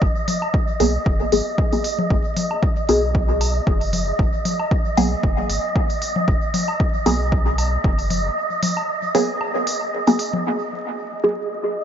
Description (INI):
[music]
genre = dub techno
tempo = 115 BPM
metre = 4/4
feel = swing 55% on 16ths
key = G# minor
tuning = A4 = 439 Hz
[part]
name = pure sine sub bass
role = bass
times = 0.0-8.3 s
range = F#1 to B1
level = -23 LUFS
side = equal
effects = sidechain pumping
[part]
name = electronic kick drum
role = drums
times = 0.0-8.0 s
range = none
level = -20 LUFS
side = equal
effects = none
[part]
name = wind-like tuned noise texture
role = texture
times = 0.0-11.8 s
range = D#5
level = -25 LUFS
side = right 1 dB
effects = built-in reverb, sidechain pumping
[part]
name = electronic hi-hat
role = drums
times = 0.3-10.3 s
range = none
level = -29 LUFS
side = right 2 dB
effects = low-pass filter on hats, low-pass filter on room
[part]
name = congas and woodblock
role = percussion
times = 0.3-10.4 s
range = none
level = -27 LUFS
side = left 3 dB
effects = sidechain pumping on perc, dub echo
[part]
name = filtered dub chord stab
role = stabs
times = 0.8-11.4 s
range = F#3 to G#4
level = -22 LUFS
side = equal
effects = phaser, cassette tape, sidechain pumping, dub echo
[sound]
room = light reverb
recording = vinyl crackle, nothing above 7.6 kHz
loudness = -18 LUFS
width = side -9 dB against mid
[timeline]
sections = 0.0-10.5 A section; 10.5-11.8 B section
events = filter sweep on synth stab 0.0-10.5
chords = 0.0 G#m7; 10.5 N.C.